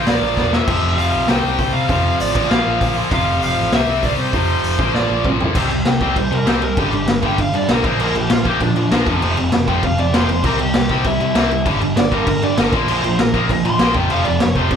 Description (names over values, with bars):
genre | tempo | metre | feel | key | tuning
punk rock | 197 BPM | 4/4 | straight | unclear | A4 = 436 Hz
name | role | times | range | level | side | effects
bluesy overdriven lead guitar | melody | 0.0-14.8 s | D4 to C6 | -21 LUFS | equal | distortion
biting overdriven guitar | riff | 0.0-14.8 s | F2 to C4 | -22 LUFS | right 8 dB | none
tight distorted guitar | riff | 0.0-14.8 s | F2 to C4 | -22 LUFS | left 10 dB | distortion
overdriven picked electric bass | bass | 0.1-14.8 s | E1 to C3 | -22 LUFS | equal | none
raw garage drum kit | drums | 0.1-14.8 s | crash cymbal, hi-hat, kick drum, snare drum, toms | -19 LUFS | equal | none
room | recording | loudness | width
light reverb | band playing live in one room | -14 LUFS | side -7 dB against mid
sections
0.0-5.6 A section; 5.6-14.8 B section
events
half time 0.0-5.6; drum fill 0.4-0.7, 4.9-5.6; lead electric guitar solo 5.6-14.8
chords
0.0 Bb; 0.7 F5; 1.3 C5; 1.9 F; 2.4 Bb5; 3.1 F; 3.7 C; 4.3 F5; 4.8 Bb; 5.6 C5; 6.8 G5; 7.8 Bb; 9.1 F5; 10.4 C; 11.7 G5; 12.7 Bb5; 14.0 F5